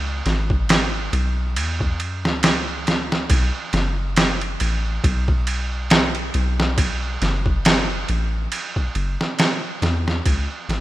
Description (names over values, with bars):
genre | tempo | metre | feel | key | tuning
trip hop | 69 BPM | 4/4 | swing 56% on 16ths | unclear | A4 = 439 Hz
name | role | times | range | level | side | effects
soft 808-style bass | bass | 0.0-10.8 s | F#1 to F#2 | -23 LUFS | equal | none
trip hop sampler-style drum kit | drums | 0.3-10.8 s | kick drum, ride cymbal, snare drum | -20 LUFS | right 1 dB | none
room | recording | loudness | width
light reverb | rough home demo mix | -18 LUFS | side -15 dB against mid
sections
0.0-10.8 A section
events
fade-out 7.9-10.8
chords
none